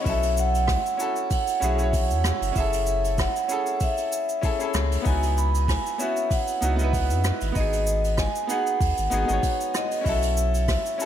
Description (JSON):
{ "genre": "sunset chillout", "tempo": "96 BPM", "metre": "4/4", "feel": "swing 55% on 16ths", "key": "C# minor", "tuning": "A4 = 440 Hz", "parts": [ { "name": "vibraphone with medium hard mallets", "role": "melody", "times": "0.0-11.1 s", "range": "D#5 to B5", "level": "-26 LUFS", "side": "right 1 dB", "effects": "vintage 12-bit sampler grit, digital delay" }, { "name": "bright grand piano", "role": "accompaniment", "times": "0.0-11.1 s", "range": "B3 to C#5", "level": "-29 LUFS", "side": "moving between left 8 dB and right 6 dB", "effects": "auto-pan, slapback echo" }, { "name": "warm sub bass", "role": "bass", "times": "0.1-10.8 s", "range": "F#1 to F#2", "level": "-24 LUFS", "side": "equal", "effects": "none" }, { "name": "electronic kick drum", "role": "drums", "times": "0.1-10.8 s", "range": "none", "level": "-26 LUFS", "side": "equal", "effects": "none" }, { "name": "jazz brush drum kit", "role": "drums", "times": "0.1-11.1 s", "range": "cabasa, hi-hat, rim click", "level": "-32 LUFS", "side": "right 1 dB", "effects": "none" } ], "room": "moderate scoring stage reverb, RT60 1.7 s, small room reverb", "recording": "big arena sound", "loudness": "-21 LUFS", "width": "side -10 dB against mid", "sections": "0.0-11.1 A section", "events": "none", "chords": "0.1 B7sus4; 2.6 F#m7; 5.1 C#m11; 7.6 G#m7; 10.1 B7sus4", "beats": "| 0.06 0.69 1.31 1.94 | 2.56 3.19 3.81 4.44 | 5.06 5.69 6.31 6.94 | 7.56 8.19 8.81 9.44 | 10.06 10.69" }